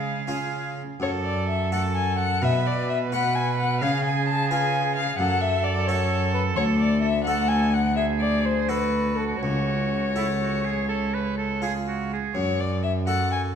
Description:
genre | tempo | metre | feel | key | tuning
classical, baroque-style sonata movement with continuo | 80-88 BPM (dotted quarters) | 12/8 | rubato | F# minor | A4 = 440 Hz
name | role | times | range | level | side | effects
rich violin | melody | 0.0-13.4 s | A4 to A5 | -26 LUFS | left 6 dB | none
bright oboe | second line | 0.0-12.4 s | E4 to B4 | -30 LUFS | right 7 dB | none
harpsichord | accompaniment | 0.0-13.6 s | C#2 to B4 | -29 LUFS | left 1 dB | none
rich cello | bass | 0.0-13.6 s | C#2 to C#3 | -26 LUFS | right 2 dB | none
room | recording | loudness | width
wet recital hall reverb, RT60 1.5 s | dark, warm production | -22 LUFS | side -8 dB against mid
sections
0.0-12.4 A section; 12.4-13.6 A section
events
none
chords
0.0 C#; 1.0 F#m; 2.4 B5; 3.8 C#7; 5.2 F#m; 6.6 D; 9.4 F#m/C#; 10.9 C#; 12.4 F#m

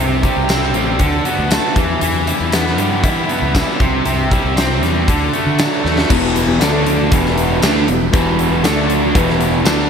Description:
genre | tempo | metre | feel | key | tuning
classic rock | 118 BPM | 4/4 | straight | E minor | A4 = 440 Hz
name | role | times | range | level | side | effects
bright tonewheel organ | sustained chords | 0.0-9.9 s | D4 to E5 | -28 LUFS | equal | none
biting overdriven guitar | riff | 0.0-9.9 s | E2 to A4 | -19 LUFS | right 9 dB | slapback echo
tight distorted guitar | riff | 0.0-9.9 s | E2 to E4 | -20 LUFS | left 10 dB | distortion, slapback echo
fuzz fingered electric bass | bass | 0.0-9.9 s | E1 to E3 | -20 LUFS | equal | overdrive
huge arena drum kit | drums | 0.2-9.8 s | crash cymbal, hi-hat, kick drum, snare drum, tambourine | -18 LUFS | left 1 dB | none
reed electric piano | accompaniment | 6.1-9.9 s | A3 to E5 | -23 LUFS | left 5 dB | fast tremolo, slapback echo
overdriven semi-hollow guitar | riff | 6.1-9.9 s | E2 to D4 | -20 LUFS | equal | phaser
room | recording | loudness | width
moderate lush hall reverb, RT60 2.0 s, small room ambience | big arena sound | -13 LUFS | side -6 dB against mid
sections
0.0-6.1 A section; 6.1-9.9 B section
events
drum fill 5.8; reed electric piano fill 9.4-9.9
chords
0.0 C; 1.0 D6; 1.8 Em; 3.8 C; 5.1 D; 6.1 Em; 6.6 D5; 7.1 Em; 8.6 D5; 9.1 Em

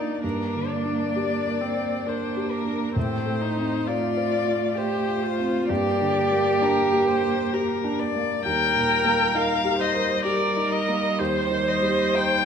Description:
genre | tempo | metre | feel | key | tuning
classical, slow romantic movement for piano quartet | 65 BPM | 3/4 | rubato | unclear | A4 = 441 Hz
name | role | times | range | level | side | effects
warm violin | melody | 0.0-12.4 s | Bb4 to G5 | -26 LUFS | left 8 dB | none
rich cello | second line | 0.0-12.4 s | G3 to Bb3 | -30 LUFS | right 5 dB | none
warm grand piano | accompaniment | 0.0-12.4 s | Eb2 to D5 | -28 LUFS | equal | none
warm viola | accompaniment | 0.0-12.4 s | C4 to Eb5 | -25 LUFS | right 2 dB | none
room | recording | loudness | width
wet recital hall reverb, RT60 1.8 s | minimal, uncompressed stereo recording | -21 LUFS | side -7 dB against mid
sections
0.0-12.4 A section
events
none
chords
0.2 Gm; 3.0 F/A; 5.7 Gm; 8.5 Eb; 11.2 Cm/Eb

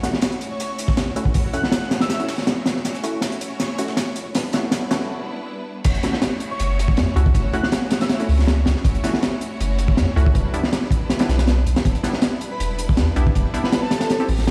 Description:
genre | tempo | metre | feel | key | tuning
drum and bass, jungle | 160 BPM | 4/4 | straight | F# phrygian | A4 = 442 Hz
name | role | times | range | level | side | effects
rich studio string section | sustained chords | 0.0-14.1 s | G3 to C#5 | -32 LUFS | equal | none
filtered dub chord stab | stabs | 0.0-14.3 s | G3 to A4 | -30 LUFS | equal | chorus, dub echo
breakbeat sampler-style drum kit | drums | 0.0-5.1 s | hi-hat, snare drum, tambourine | -38 LUFS | equal | high-pass filter on perc, high-pass filter on snare, high-pass filter on hats
crunchy breakbeat drum kit | drums | 0.0-14.5 s | crash cymbal, hi-hat, kick drum, snare drum | -23 LUFS | equal | none
airy dreamy lead | melody | 0.5-2.2, 6.5-8.2, 12.5-14.1 s | A4 to F#5 | -33 LUFS | equal | chorus, dub echo
soft dub sub bass | bass | 0.6-14.5 s | E1 to F#2 | -22 LUFS | equal | high-pass filter
room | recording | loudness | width
light reverb, small room ambience | played on a big sound system in a bare room, stone room reverb, vinyl crackle | -21 LUFS | mono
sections
0.0-5.8 A section; 5.8-14.5 B section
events
build-up 0.0-5.8; drum fill 2.8-5.1; break 5.1-5.8; drop 5.8-14.5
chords
0.0 F#m7; 4.3 Em7; 5.8 F#m7; 10.3 Em7

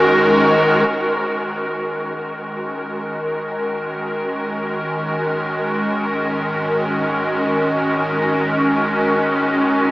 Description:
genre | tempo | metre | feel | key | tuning
ambient | free time | none | none | unclear | A4 = 443 Hz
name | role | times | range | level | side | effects
evolving wavetable pad | sustained chords | 0.0-9.9 s | G#2 to A#4 | -16 LUFS | equal | ensemble chorus, built-in reverb
deep rumbling drone | bass | 3.7-9.9 s | G#1 | -41 LUFS | equal | none
room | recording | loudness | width
wet huge ambient reverb, RT60 8.7 s | AM radio sound | -17 LUFS | side -18 dB against mid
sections
0.9-9.9 A section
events
fade-in on ambient pad 0.9-9.9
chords
0.0 G#9sus4

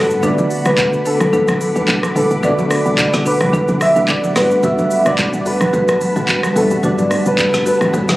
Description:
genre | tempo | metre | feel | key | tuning
amapiano | 109 BPM | 4/4 | swing 55% on 16ths | B minor | A4 = 440 Hz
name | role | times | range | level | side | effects
soft struck synth lead | melody | 0.0-8.2 s | A4 to E5 | -17 LUFS | equal | chorus, ping-pong delay
tine electric piano | accompaniment | 0.0-8.2 s | D3 to F#4 | -21 LUFS | equal | medium stereo tremolo
glassy FM pad | sustained chords | 0.0-8.2 s | G3 to D6 | -23 LUFS | left 1 dB | ensemble chorus, built-in reverb, sidechain pumping
buzzing marimba with medium mallets | stabs | 0.0-8.1 s | D4 to B4 | -24 LUFS | equal | ping-pong delay
tight log drum bass | bass | 0.0-8.2 s | F#1 to D2 | -23 LUFS | equal | none
afro-pop drum kit | drums | 0.1-8.2 s | handclaps, hi-hat, kick drum, rim click, shaker, snare drum, toms | -20 LUFS | equal | none
congas | percussion | 0.2-8.2 s | none | -23 LUFS | equal | none
room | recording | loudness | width
light reverb | recorded on a phone in the room, club reverb | -13 LUFS | side -17 dB against mid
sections
0.0-8.2 A section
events
none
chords
0.2 Bm7; 4.4 Gmaj9

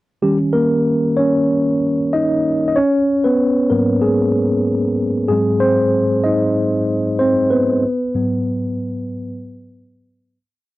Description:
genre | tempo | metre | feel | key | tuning
soul | 95 BPM | 4/4 | swing 54% on 16ths | unclear | A4 = 442 Hz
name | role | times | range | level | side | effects
mellow tine electric piano | solo | 0.2-10.4 s | G#2 to D#5 | -15 LUFS | equal | medium stereo tremolo
room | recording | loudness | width
light reverb | home recording on cassette | -14 LUFS | side -17 dB against mid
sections
0.2-10.4 A section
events
tine electric piano solo 0.2-10.4; fade-out 7.8-10.4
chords
0.2 D#7(no3); 2.8 G#m9; 5.3 G#7; 7.8 G#m7

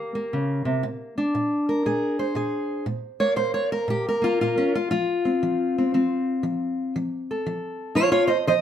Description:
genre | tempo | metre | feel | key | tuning
acoustic country blues, solo or duo | 118 BPM | 4/4 | swing 65% on 8ths | unclear | A4 = 438 Hz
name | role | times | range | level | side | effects
fingerpicked steel-string acoustic guitar | solo | 0.0-8.6 s | Bb2 to Eb5 | -22 LUFS | equal | none
room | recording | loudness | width
wet studio reverb, RT60 0.8 s | band playing live in one room | -22 LUFS | side -9 dB against mid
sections
0.0-8.6 A section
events
none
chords
0.0 Eb7; 0.8 Bb7; 4.9 F

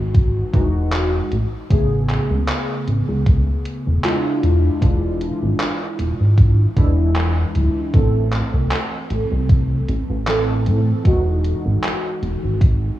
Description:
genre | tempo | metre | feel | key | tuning
vaporwave | 77 BPM | 4/4 | swing 54% on 16ths | E major | A4 = 439 Hz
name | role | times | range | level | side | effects
warbly lo-fi synth keys | accompaniment | 0.0-13.0 s | C#3 to A4 | -22 LUFS | equal | analog chorus, analog delay
chorused synth bass | bass | 0.0-12.9 s | D1 to A2 | -18 LUFS | equal | none
electronic kick drum | drums | 0.1-12.8 s | none | -14 LUFS | equal | vintage 12-bit sampler grit
gated 80s digital drum machine | drums | 0.1-12.8 s | handclaps, hi-hat | -28 LUFS | equal | gated reverb, overdrive, vintage 12-bit sampler grit
room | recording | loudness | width
little or no reverb | cassette tape, small room reverb | -16 LUFS | side -14 dB against mid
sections
0.0-13.0 A section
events
none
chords
0.0 Emaj9; 1.3 Amaj9; 4.4 E7b9; 7.9 Am; 11.1 Emaj9

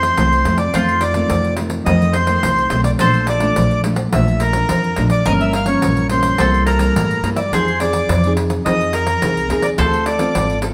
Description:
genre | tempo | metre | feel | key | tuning
samba and choro | 106 BPM | 4/4 | straight | unclear | A4 = 440 Hz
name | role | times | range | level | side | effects
accordion | melody | 0.0-10.6 s | Bb4 to F5 | -21 LUFS | equal | none
mandolin | second line | 0.0-10.7 s | E4 to Bb4 | -29 LUFS | equal | none
nylon-string guitar | accompaniment | 0.0-10.7 s | F2 to A4 | -23 LUFS | equal | none
upright bass | bass | 0.0-10.7 s | G1 to A2 | -22 LUFS | equal | none
pandeiro | percussion | 0.0-10.7 s | none | -25 LUFS | equal | none
room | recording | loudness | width
wet large studio reverb, RT60 1.2 s | none | -16 LUFS | mono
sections
0.0-10.7 A section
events
none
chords
0.0 Fmaj7; 0.8 F7; 3.0 Bbmaj7; 5.3 Gm7b5; 6.4 C7; 7.5 Fm7; 9.8 Dm7

